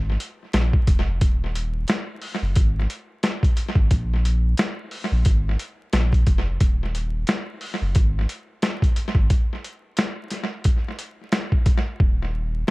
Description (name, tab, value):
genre	hip hop, boom-bap hip-hop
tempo	89 BPM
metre	4/4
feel	swing 59% on 16ths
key	unclear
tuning	A4 = 440 Hz
part	soft dub sub bass	bass	0.0-12.6 s	Eb1 to Bb1	-22 LUFS	equal	none
part	boom bap sampler-style drum kit	drums	0.2-12.7 s	hi-hat, kick drum, snare drum	-20 LUFS	equal	tape echo
room	little or no reverb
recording	echo-heavy mix, vinyl crackle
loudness	-20 LUFS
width	side -22 dB against mid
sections	0.0-12.7 A section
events	hi-hats muted 12.0-12.7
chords	none